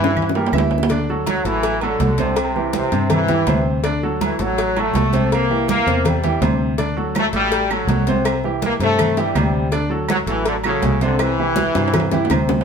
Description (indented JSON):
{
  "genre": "latin, salsa",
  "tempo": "163 BPM",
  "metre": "4/4",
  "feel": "straight",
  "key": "unclear",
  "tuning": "A4 = 441 Hz",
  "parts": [
    { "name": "brilliant trombone section", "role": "melody", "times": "0.0-12.3 s", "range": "C3 to Bb3", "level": "-21 LUFS", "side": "left 2 dB", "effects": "none" },
    { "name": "clear concert grand piano", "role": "accompaniment", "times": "0.0-12.6 s", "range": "C3 to E5", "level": "-22 LUFS", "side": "right 2 dB", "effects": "none" },
    { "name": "fingered electric bass", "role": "bass", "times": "0.0-12.6 s", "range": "A1 to G2", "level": "-22 LUFS", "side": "left 1 dB", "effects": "none" },
    { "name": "bongos and cowbell", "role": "percussion", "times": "0.0-12.6 s", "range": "none", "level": "-26 LUFS", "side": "left 4 dB", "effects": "none" },
    { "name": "timbales and agogo bells", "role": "percussion", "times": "0.1-12.6 s", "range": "none", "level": "-27 LUFS", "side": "right 4 dB", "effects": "none" },
    { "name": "claves", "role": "percussion", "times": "0.2-0.7, 7.2-12.5 s", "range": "none", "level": "-31 LUFS", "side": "right 5 dB", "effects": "none" },
    { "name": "congas", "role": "percussion", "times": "0.2-12.6 s", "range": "none", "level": "-25 LUFS", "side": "right 3 dB", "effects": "none" }
  ],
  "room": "wet studio reverb, RT60 1.0 s",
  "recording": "band playing live in one room",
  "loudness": "-16 LUFS",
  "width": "side -6 dB against mid",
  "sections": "0.9-12.6 A section",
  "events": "drum fill 0.0-0.9, 11.6-12.6",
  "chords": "0.0 C7 (rootless); 0.9 D; 2.4 C; 3.8 D; 5.3 C7; 6.8 D; 8.3 C; 9.7 D; 11.2 C"
}